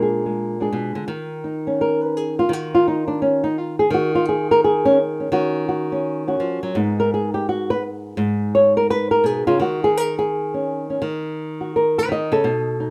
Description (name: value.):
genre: solo jazz.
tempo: 169 BPM.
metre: 4/4.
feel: swing 65% on 8ths.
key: Eb minor.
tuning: A4 = 440 Hz.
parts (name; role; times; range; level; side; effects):
flamenco guitar; solo; 0.0-12.9 s; Ab2 to Eb5; -20 LUFS; equal; none.
room: light reverb.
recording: close, detailed microphones.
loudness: -20 LUFS.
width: mono.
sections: 0.0-1.1 A section; 1.1-12.9 A section.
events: nylon-string guitar solo 0.0-1.1, 1.1-12.9.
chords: 0.0 Bb7; 1.1 Ebm7; 6.7 Abm; 9.6 Ebm7.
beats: 0.01 0.36 0.72 | 1.07 1.43 1.78 2.13 | 2.49 2.84 3.19 3.55 | 3.90 4.26 4.61 4.96 | 5.32 5.67 6.03 6.38 | 6.74 7.09 7.45 7.81 | 8.16 8.52 8.87 9.23 | 9.59 9.94 10.30 10.65 | 11.01 11.37 11.72 12.08 | 12.44 12.79.